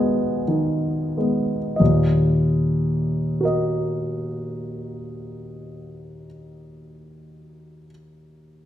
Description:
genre	classical, romantic nocturne for solo piano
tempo	37 BPM (dotted quarters)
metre	12/8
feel	rubato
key	unclear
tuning	A4 = 441 Hz
part	warm concert grand piano	solo	0.0-8.7 s	Eb2 to Ab5	-20 LUFS	equal	none
room	wet recital hall reverb, RT60 1.6 s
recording	none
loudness	-19 LUFS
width	side -11 dB against mid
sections	0.0-1.8 A section; 1.8-8.4 B section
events	slowing down 0.0-1.8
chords	0.0 Abm/Eb; 1.8 Ebm

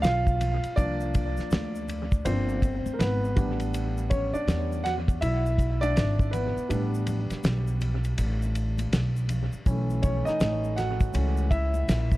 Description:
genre	hip hop, jazz-hop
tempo	81 BPM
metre	4/4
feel	swing 63% on 16ths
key	unclear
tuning	A4 = 440 Hz
part	dark grand piano	accompaniment	0.0-12.2 s	E3 to F#5	-30 LUFS	equal	analog delay
part	upright bass	bass	0.0-12.2 s	G1 to E2	-27 LUFS	equal	none
part	cloth-damped thuddy drum kit	drums	0.0-12.2 s	hi-hat, kick drum, ride cymbal, snare drum	-28 LUFS	equal	analog delay
part	tube shaker and congas	percussion	0.0-12.2 s	none	-42 LUFS	left 3 dB	analog delay
room	little or no reverb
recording	echo-heavy mix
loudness	-24 LUFS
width	side -17 dB against mid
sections	0.0-12.2 A section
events	grand piano solo 0.0-12.2; kick muted 6.7-9.7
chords	0.0 C9sus4; 3.4 A9sus4; 9.7 B9sus4

